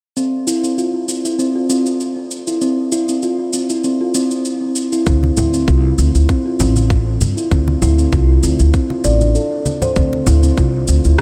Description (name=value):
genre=organic downtempo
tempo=98 BPM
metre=4/4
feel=swing 54% on 16ths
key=D minor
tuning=A4 = 440 Hz
part: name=steel tongue drum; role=arpeggios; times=0.2-11.2 s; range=C4 to D5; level=-19 LUFS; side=equal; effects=low-pass filter, analog delay
part: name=electronic cabasa and rim click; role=drums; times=0.2-11.2 s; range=none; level=-27 LUFS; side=equal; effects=none
part: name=upright bass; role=bass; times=5.1-11.2 s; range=A1 to G2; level=-16 LUFS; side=equal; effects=none
part: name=electronic kick drum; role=drums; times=5.1-11.2 s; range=none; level=-19 LUFS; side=equal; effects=none
part: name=congas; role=percussion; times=5.2-10.5 s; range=none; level=-26 LUFS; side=equal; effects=none
room=moderate huge ambient reverb, RT60 7.4 s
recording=dreamy mix soaked in reverb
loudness=-16 LUFS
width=mono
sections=0.2-10.0 A section; 10.0-11.2 B section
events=filter sweep on steel tongue drum 0.2-10.0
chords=0.2 D7sus2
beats=| 0.17 0.78 1.39 2.00 | 2.62 3.23 3.84 4.45 | 5.07 5.68 6.29 6.90 | 7.51 8.13 8.74 9.35 | 9.96 10.58 11.19